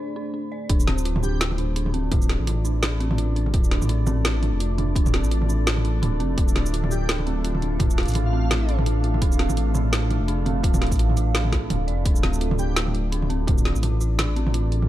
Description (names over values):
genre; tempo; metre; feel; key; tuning
half-time drum and bass; 169 BPM; 4/4; swing 58% on 16ths, half-time; unclear; A4 = 441 Hz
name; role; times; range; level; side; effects
deep dark ambient pad; sustained chords; 0.0-14.9 s; A3 to F5; -31 LUFS; right 1 dB; chorus, built-in reverb, sidechain pumping
dark detuned synth bell; arpeggios; 0.0-14.9 s; C4 to D5; -30 LUFS; right 1 dB; chorus, digital delay
dark detuned saw bass; bass; 0.7-14.9 s; D1 to A1; -23 LUFS; equal; none
drum and bass drum kit; drums; 0.7-14.9 s; hi-hat, shaker, snare drum, toms; -27 LUFS; right 1 dB; low-pass filter on hats, low-pass filter on perc, low-pass filter on snare, low-pass filter on toms, low-pass filter on room
electronic kick drum; drums; 0.7-13.6 s; none; -22 LUFS; equal; none
airy dreamy lead; melody; 1.2-1.4, 6.9-8.7, 12.6-12.7 s; F4 to G4; -36 LUFS; left 2 dB; chorus, digital delay
room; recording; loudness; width
little or no reverb; dark, warm production; -20 LUFS; side -14 dB against mid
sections
0.7-14.9 A section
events
drop 0.7-14.9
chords
0.0 D5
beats
0.34 | 0.70 1.05 1.41 1.76 | 2.12 2.47 2.83 3.18 | 3.54 3.89 4.25 4.60 | 4.96 5.31 5.67 6.02 | 6.38 6.73 7.09 7.44 | 7.80 8.15 8.51 8.86 | 9.22 9.57 9.93 10.28 | 10.64 10.99 11.35 11.70 | 12.06 12.41 12.77 13.12 | 13.48 13.83 14.19 14.54